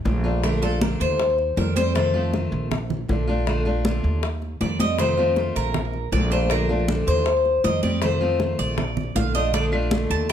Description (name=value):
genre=latin, Cuban son and guajira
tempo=158 BPM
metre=4/4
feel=straight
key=Bb major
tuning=A4 = 440 Hz
part: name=fingerpicked steel-string acoustic guitar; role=accompaniment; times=0.0-10.3 s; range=C3 to F4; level=-26 LUFS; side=equal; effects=none
part: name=upright bass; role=bass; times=0.1-10.3 s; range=Bb1 to F2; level=-25 LUFS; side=equal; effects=none
part: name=bongos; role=percussion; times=0.1-10.3 s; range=none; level=-32 LUFS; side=left 6 dB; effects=none
part: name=congas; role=percussion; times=0.1-10.3 s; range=none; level=-28 LUFS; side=equal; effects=none
part: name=Cuban tres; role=arpeggios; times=0.4-2.3, 4.6-10.3 s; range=A4 to A5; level=-24 LUFS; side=left 2 dB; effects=analog delay
part: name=claves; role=percussion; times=9.7-9.9 s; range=none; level=-34 LUFS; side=equal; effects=none
room=light reverb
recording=none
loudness=-20 LUFS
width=side -9 dB against mid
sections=0.0-10.3 A section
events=Cuban tres solo 0.0-10.3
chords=0.0 Bbmaj7; 1.2 Eb6; 2.0 F7; 2.7 Bbmaj7; 4.2 Eb6; 5.0 F7; 5.7 Bbmaj7; 7.3 Eb6; 8.0 F7; 8.8 Bbmaj7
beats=0.06 | 0.44 0.82 1.20 1.57 | 1.95 2.33 2.71 3.09 | 3.47 3.85 4.23 4.61 | 4.99 5.37 5.75 6.12 | 6.50 6.88 7.26 7.64 | 8.02 8.40 8.78 9.16 | 9.54 9.92 10.29